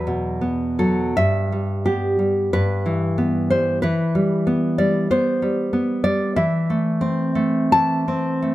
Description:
romantic piece for solo classical guitar; 75-96 BPM; 4/4; rubato; E minor; A4 = 440 Hz
nylon-string guitar; solo; 0.0-8.5 s; E2 to A5; -18 LUFS; equal
light reverb; close, detailed microphones; -18 LUFS; side -15 dB against mid
0.0-8.5 A section
0.0 B5/E; 1.2 Em/G; 3.8 Em; 6.4 Am/E

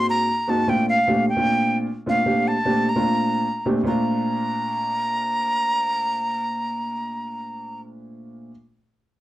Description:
jazz; 151 BPM; 4/4; straight; Bb major; A4 = 440 Hz
breathy bright jazz flute; melody; 0.0-7.8 s; F5 to Bb5; -22 LUFS; equal
warm concert grand piano; accompaniment; 0.0-8.5 s; Ab2 to G4; -24 LUFS; equal
moderate small room reverb, RT60 0.5 s; worn, warbling old tape, cassette tape, warbly pitch drift; -20 LUFS; side -15 dB against mid
0.0-3.9 A section; 3.9-7.0 B section
0.0 Ab9; 0.7 Bbmaj9

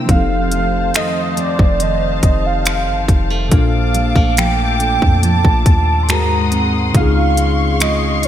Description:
contemporary R&B; 70 BPM; 4/4; straight; A4 = 440 Hz
muted felt-like synth keys; accompaniment; 0.0-8.3 s; Ab2 to C5; -21 LUFS; left 3 dB; chorus
warm studio string section; sustained chords; 0.0-8.3 s; Ab4 to Eb6; -24 LUFS; left 3 dB
fingerpicked steel-string acoustic guitar; arpeggios; 0.0-8.3 s; F2 to F4; -22 LUFS; right 2 dB; tape echo
warm velvety synth lead; melody; 0.1-8.3 s; D5 to C6; -20 LUFS; right 2 dB; chorus, tape echo
clean 808-style bass; bass; 0.1-8.3 s; F1 to F2; -18 LUFS; equal
trap drum kit; drums; 0.1-8.3 s; finger snaps, hi-hat, kick drum; -16 LUFS; equal
moderate lush hall reverb, RT60 2.6 s; dreamy mix soaked in reverb; -12 LUFS; side -11 dB against mid
0.0-8.3 A section
0.1 F7; 3.5 Bbmaj7; 6.1 Ab7; 6.9 Dbmaj7

